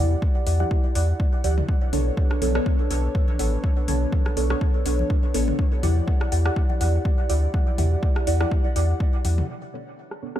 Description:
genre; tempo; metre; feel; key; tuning
dub techno; 123 BPM; 4/4; swing 55% on 16ths; B minor; A4 = 440 Hz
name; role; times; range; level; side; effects
dark analog pad; sustained chords; 0.0-10.4 s; D4 to F#5; -33 LUFS; right 1 dB; chorus, sidechain pumping
deep mellow chord stab; stabs; 0.0-10.4 s; B3 to F#5; -28 LUFS; equal; chorus, phaser, dub echo
soft dub sub bass; bass; 0.0-9.4 s; A1 to E2; -22 LUFS; equal; tube saturation, sidechain pumping
electronic kick drum; drums; 0.2-9.1 s; none; -23 LUFS; equal; overdrive, studio reverb
deep house drum kit; drums; 0.5-10.4 s; hi-hat, rim click; -34 LUFS; left 1 dB; overdrive, low-pass filter on hats, studio reverb, low-pass filter on snare, dub echo
electronic congas and toms; percussion; 0.6-9.5 s; none; -36 LUFS; left 1 dB; overdrive, sidechain pumping on toms, studio reverb, sidechain pumping on perc, dub echo
room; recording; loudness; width
little or no reverb; none; -20 LUFS; side -12 dB against mid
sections
0.0-9.5 A section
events
none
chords
0.0 Em9; 1.7 Bm9; 5.6 Em9; 9.5 Bm9

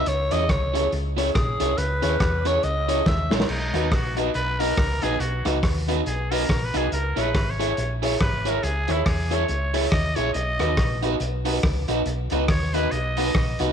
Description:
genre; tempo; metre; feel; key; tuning
ska; 140 BPM; 4/4; swing 59% on 8ths; B major; A4 = 440 Hz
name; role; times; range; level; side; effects
raspy alto saxophone; melody; 0.0-3.3 s; G#4 to E5; -27 LUFS; left 1 dB; none
hollow-body short-scale fingered electric bass; bass; 0.0-13.7 s; G#1 to E2; -26 LUFS; equal; none
crunchy breakbeat drum kit; drums; 0.1-13.7 s; crash cymbal, hi-hat, kick drum, rim click, snare drum; -26 LUFS; equal; none
electric guitar at the edge of break-up; accompaniment; 0.3-13.7 s; D#4 to C#5; -28 LUFS; right 10 dB; slapback echo
warm upright piano; stabs; 0.3-13.7 s; C#4 to E5; -29 LUFS; left 12 dB; none
growling trumpet; melody; 3.5-13.6 s; D#4 to D#5; -29 LUFS; equal; none
room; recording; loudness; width
light reverb, small room reverb; 1960s-style stereo with parts hard left and right; -20 LUFS; side -8 dB against mid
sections
0.0-3.5 A section; 3.5-13.7 A section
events
alto saxophone solo 0.0-3.5; drum fill 3.1-3.5; trumpet solo 3.5-13.7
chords
0.1 C#m; 3.5 B; 6.9 C#m; 10.3 B

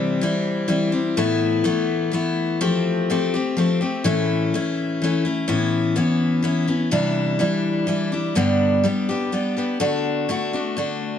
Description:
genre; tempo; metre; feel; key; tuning
rock; 125 BPM; 3/4; straight; unclear; A4 = 440 Hz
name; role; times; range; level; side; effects
picked steel-string acoustic guitar; solo; 0.0-11.2 s; G2 to G4; -19 LUFS; left 2 dB; analog delay
room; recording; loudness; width
moderate studio ambience, RT60 0.5 s; dark, warm production; -19 LUFS; side -9 dB against mid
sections
0.0-5.5 A section; 5.5-11.2 B section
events
none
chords
0.0 C; 1.2 Asus2; 2.6 Fadd9; 4.1 A; 5.5 Aadd9; 6.9 Cadd9; 8.4 G; 9.8 D

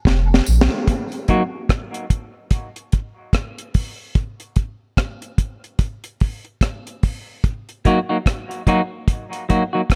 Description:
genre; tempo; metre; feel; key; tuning
dub reggae; 73 BPM; 4/4; swing 60% on 16ths; Eb minor; A4 = 440 Hz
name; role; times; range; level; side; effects
soft dub sub bass; bass; 0.1-0.7 s; F1 to Bb1; -18 LUFS; equal; none
deep reggae drum kit; drums; 0.1-10.0 s; hi-hat, kick drum, rim click, snare drum; -21 LUFS; equal; none
tambourine; percussion; 0.5-0.7 s; none; -37 LUFS; equal; dub echo
semi-hollow electric guitar; accompaniment; 1.3-1.4, 7.8-9.8 s; Gb3 to Gb4; -22 LUFS; equal; dub echo
room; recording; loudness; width
light reverb, small room ambience; echo-heavy mix; -21 LUFS; mono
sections
0.9-10.0 A section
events
break 0.0-0.9, 0.9-7.4; drum fill 0.1-0.9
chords
0.0 Bb5; 0.9 Ebm; 4.2 N.C.; 7.4 Ebm

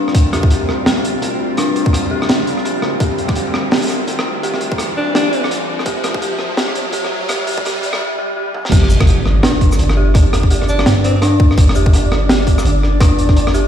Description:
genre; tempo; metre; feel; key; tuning
half-time drum and bass; 168 BPM; 4/4; swing 60% on 16ths, half-time; G minor; A4 = 440 Hz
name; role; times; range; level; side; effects
bowed-like drone; sustained chords; 0.0-8.0 s; G3 to Bb4; -22 LUFS; left 1 dB; built-in reverb, sidechain pumping
dark detuned synth bell; arpeggios; 0.0-13.7 s; D4 to G4; -22 LUFS; equal; chorus, tape echo
long sustained 808-style bass; bass; 0.0-13.7 s; G1 to G2; -19 LUFS; equal; high-pass filter
riser, swell and impact; sound effects; 0.0-10.1 s; none; -22 LUFS; equal; none
crunchy breakbeat drum kit; drums; 0.1-13.6 s; crash cymbal, hi-hat, rim click, shaker, snare drum, toms; -19 LUFS; equal; none
electronic kick drum; drums; 0.1-13.3 s; none; -12 LUFS; equal; overdrive
clear alto saxophone; melody; 5.0-5.5, 10.7-11.2 s; C4 to D4; -22 LUFS; left 1 dB; low-pass filter, ping-pong delay
flickering grainy texture; texture; 8.9-13.7 s; D4 to D5; -22 LUFS; equal; built-in reverb
room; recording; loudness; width
light reverb, studio ambience; played on a big sound system in a bare room, stone room reverb, high-pass filter; -12 LUFS; side -9 dB against mid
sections
0.0-8.7 A section; 8.7-13.7 B section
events
build-up 0.0-8.7; riser 0.0-8.0; filter sweep 0.0-8.7; swell 8.0-8.7; drum fill 8.5; drop 8.7-13.7; impact 8.7-10.1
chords
0.0 Gm; 8.7 G5

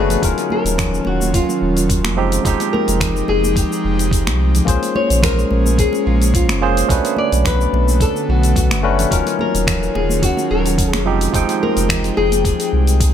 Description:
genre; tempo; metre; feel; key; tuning
sunset chillout; 108 BPM; 4/4; straight; unclear; A4 = 440 Hz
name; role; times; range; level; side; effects
flamenco guitar; melody; 0.0-13.1 s; F4 to D5; -22 LUFS; left 3 dB; dub echo
barky tine electric piano; accompaniment; 0.0-13.1 s; F3 to G5; -21 LUFS; moving between left 8 dB and right 7 dB; overdrive, auto-pan, dub echo
airy breathy pad; sustained chords; 0.0-13.1 s; D3 to G5; -23 LUFS; equal; chorus
warm sub bass; bass; 0.0-13.1 s; Eb1 to C2; -18 LUFS; equal; none
deep house drum kit; drums; 0.1-13.1 s; finger snaps, hi-hat, shaker; -23 LUFS; left 1 dB; none
congas; percussion; 0.1-12.4 s; none; -28 LUFS; right 3 dB; dub echo
electronic kick drum; drums; 0.2-13.1 s; none; -19 LUFS; equal; none
room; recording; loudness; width
light reverb, digital ambience; echo-heavy mix; -14 LUFS; side -9 dB against mid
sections
0.0-13.1 A section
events
none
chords
0.2 Ebm9; 2.2 Fm9; 4.7 Bbm9; 6.9 Bm9; 9.1 Ebm9; 11.1 Fm9

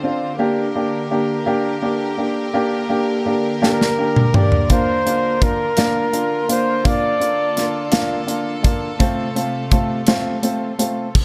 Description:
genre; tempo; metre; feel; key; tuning
six-eight pop ballad; 56 BPM (dotted quarters); 6/8; straight; Bb major; A4 = 441 Hz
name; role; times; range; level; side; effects
warm baby grand piano; accompaniment; 0.0-11.1 s; A3 to G4; -23 LUFS; equal; none
rich studio string section; sustained chords; 0.0-11.1 s; C3 to C5; -28 LUFS; equal; none
warm flugelhorn; melody; 3.6-8.3 s; Bb4 to D5; -23 LUFS; equal; tape echo
modern studio drum kit; drums; 3.6-11.2 s; crash cymbal, hi-hat, kick drum, snare drum, toms; -20 LUFS; equal; none
room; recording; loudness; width
light reverb, studio ambience; none; -19 LUFS; mono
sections
0.0-11.2 A section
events
drum fill 3.6-4.7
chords
0.4 Gm; 4.7 Bb; 9.0 F

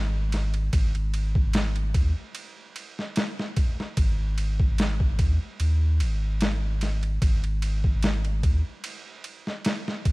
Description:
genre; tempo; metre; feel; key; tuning
trip hop; 74 BPM; 4/4; swing 54% on 16ths; unclear; A4 = 440 Hz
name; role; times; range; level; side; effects
warm sub bass; bass; 0.0-8.6 s; G#1 to D#2; -24 LUFS; equal; none
boom bap sampler-style drum kit; drums; 0.3-10.1 s; kick drum, ride cymbal, snare drum; -26 LUFS; equal; none
room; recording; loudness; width
little or no reverb; vinyl crackle; -23 LUFS; side -23 dB against mid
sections
0.0-10.1 A section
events
none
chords
none

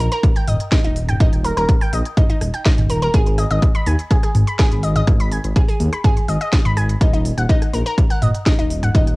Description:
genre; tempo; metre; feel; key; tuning
melodic techno; 124 BPM; 4/4; straight; G# minor; A4 = 441 Hz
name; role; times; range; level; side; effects
analog pluck; arpeggios; 0.0-9.0 s; D#4 to B5; -23 LUFS; equal; chorus, sidechain pumping, cassette tape, analog delay
dark detuned saw bass; bass; 0.0-9.2 s; D#1 to D#2; -20 LUFS; equal; tube saturation, sidechain pumping
techno drum kit; drums; 0.1-9.2 s; hi-hat, rim click, snare drum, toms; -23 LUFS; equal; cassette tape
electronic kick drum; drums; 0.2-9.0 s; none; -16 LUFS; equal; cassette tape
room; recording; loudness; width
little or no reverb; home recording on cassette; -14 LUFS; side -22 dB against mid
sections
0.0-9.2 A section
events
none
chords
0.0 D#; 3.1 G#m; 7.0 D#m

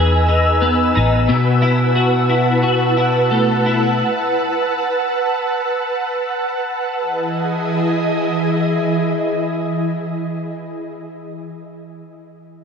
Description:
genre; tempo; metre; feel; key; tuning
dream pop; 76-90 BPM; 4/4; straight; E major; A4 = 441 Hz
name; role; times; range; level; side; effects
ethereal airy pad; sustained chords; 0.0-10.9 s; E3 to E6; -18 LUFS; right 1 dB; ensemble chorus, built-in reverb
twelve-string electric guitar; arpeggios; 0.0-4.6 s; B2 to G#4; -16 LUFS; left 2 dB; ensemble chorus, digital delay
vintage muted fingered electric bass; bass; 0.0-1.3 s; A1 to E2; -16 LUFS; equal; none
room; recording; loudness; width
moderate plate reverb, RT60 1.5 s, small room ambience; none; -15 LUFS; side -6 dB against mid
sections
0.0-7.0 A section; 7.0-10.1 B section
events
slowing down 1.3-7.0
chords
0.0 Emaj7; 1.3 B7sus4; 7.0 Emaj7

